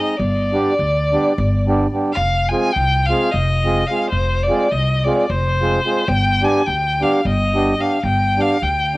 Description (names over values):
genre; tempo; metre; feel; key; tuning
balkan folk, Balkan wedding band; 214 BPM (eighths); 7/8; straight; unclear; A4 = 440 Hz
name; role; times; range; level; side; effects
rich violin; melody; 0.0-9.0 s; C5 to Ab5; -19 LUFS; left 1 dB; none
mellow accordion; accompaniment; 0.0-9.0 s; G3 to Ab4; -20 LUFS; right 1 dB; cassette tape, plate reverb
upright bass; bass; 0.2-9.0 s; F1 to D2; -20 LUFS; equal; none
room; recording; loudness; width
moderate studio ambience, RT60 0.5 s; home recording on cassette; -15 LUFS; side -20 dB against mid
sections
0.0-2.2 A section; 2.2-9.0 B section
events
none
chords
0.2 G; 2.2 Fm; 6.1 G